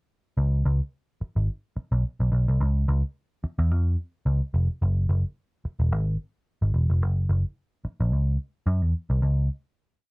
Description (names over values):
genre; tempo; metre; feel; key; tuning
funk; 109 BPM; 4/4; swing 56% on 16ths; unclear; A4 = 438 Hz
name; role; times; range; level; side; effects
vintage muted picked electric bass; solo; 0.4-9.5 s; Fb1 to Gb2; -22 LUFS; equal; none
room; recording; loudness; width
light reverb; dark, warm production; -23 LUFS; side -32 dB against mid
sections
0.4-9.2 groove; 9.2-10.1 final chord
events
none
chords
none